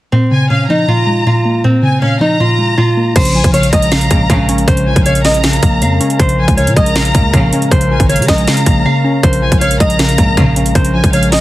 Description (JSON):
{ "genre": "hip hop, trap", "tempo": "158 BPM", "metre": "4/4", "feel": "half-time", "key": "Bb minor", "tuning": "A4 = 437 Hz", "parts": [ { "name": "nylon-string guitar", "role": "melody", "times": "0.1-11.4 s", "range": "C4 to F5", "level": "-16 LUFS", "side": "equal", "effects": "none" }, { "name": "warbly dusty pluck", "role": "accompaniment", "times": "0.1-11.4 s", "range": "Bb2 to Db4", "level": "-14 LUFS", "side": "equal", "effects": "chorus" }, { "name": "warm studio violin section", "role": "second line", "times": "0.3-11.4 s", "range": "F5 to Bb5", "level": "-19 LUFS", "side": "left 1 dB", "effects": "tape echo" }, { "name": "warbly tape-like pad", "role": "sustained chords", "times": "3.9-11.4 s", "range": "Ab3 to Bb4", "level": "-23 LUFS", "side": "equal", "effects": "chorus, built-in reverb" }, { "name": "growling 808-style bass", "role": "bass", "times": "3.2-11.4 s", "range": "Ab1 to Db3", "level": "-16 LUFS", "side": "equal", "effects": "none" }, { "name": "trap drum kit", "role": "drums", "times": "3.2-11.4 s", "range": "crash cymbal, hi-hat, kick drum, snare drum", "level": "-13 LUFS", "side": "equal", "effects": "overdrive" }, { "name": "warm symphonic string section", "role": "stabs", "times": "4.1-4.5, 7.1-7.5, 10.2-10.5 s", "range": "Bb1 to Db3", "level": "-18 LUFS", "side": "equal", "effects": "tape echo" } ], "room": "light reverb", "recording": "dense, heavily limited modern master, vinyl crackle", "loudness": "-9 LUFS", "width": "side -16 dB against mid", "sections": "0.1-3.2 A section; 3.2-11.4 B section", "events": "drums muted 8.9-9.2", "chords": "0.1 Bbm7" }